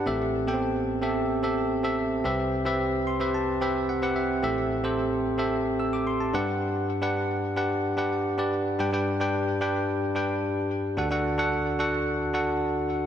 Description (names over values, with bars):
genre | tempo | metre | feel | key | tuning
pop | 110 BPM | 4/4 | straight | unclear | A4 = 440 Hz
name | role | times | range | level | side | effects
bell-like tine electric piano | solo | 0.0-13.1 s | A1 to E6 | -24 LUFS | equal | ping-pong delay
room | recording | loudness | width
moderate lush hall reverb, RT60 2.7 s | none | -24 LUFS | side -9 dB against mid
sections
0.0-8.8 A section; 8.8-13.1 B section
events
tine electric piano fill 2.8-4.4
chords
0.1 Am7; 2.3 Cmaj7; 4.4 Am7; 6.3 Gmaj7; 8.8 G; 11.0 D